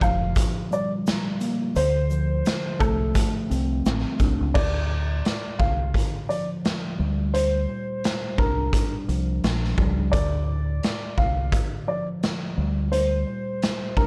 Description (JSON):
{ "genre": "hip hop, boom-bap hip-hop", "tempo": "86 BPM", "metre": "4/4", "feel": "swing 57% on 16ths", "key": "D minor", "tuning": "A4 = 440 Hz", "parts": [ { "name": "dark upright piano", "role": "melody", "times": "0.0-14.1 s", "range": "A4 to F5", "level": "-30 LUFS", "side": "equal", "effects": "high-pass filter, low-pass filter, delay" }, { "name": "mellow tine electric piano", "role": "accompaniment", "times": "0.0-14.1 s", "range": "D2 to D4", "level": "-32 LUFS", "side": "equal", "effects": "cassette tape, high-pass filter, low-pass filter" }, { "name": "deep dub fingered electric bass", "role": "bass", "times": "0.0-14.1 s", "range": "F1 to D2", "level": "-27 LUFS", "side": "equal", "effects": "none" }, { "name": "raw garage drum kit", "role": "drums", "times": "0.0-14.1 s", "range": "crash cymbal, hi-hat, kick drum, shaker, snare drum", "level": "-28 LUFS", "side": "equal", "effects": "none" }, { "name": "tube shaker and woodblock", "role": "percussion", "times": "0.0-4.4 s", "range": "none", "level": "-38 LUFS", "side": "equal", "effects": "none" } ], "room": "light reverb", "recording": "worn, warbling old tape, cassette tape, warbly pitch drift", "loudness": "-24 LUFS", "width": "mono", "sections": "0.0-4.5 A section; 4.5-14.1 B section", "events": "none", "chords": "0.0 Gm7; 1.8 Dm7; 4.5 Dm; 7.0 Bb6; 10.1 Dm; 12.6 Bb6" }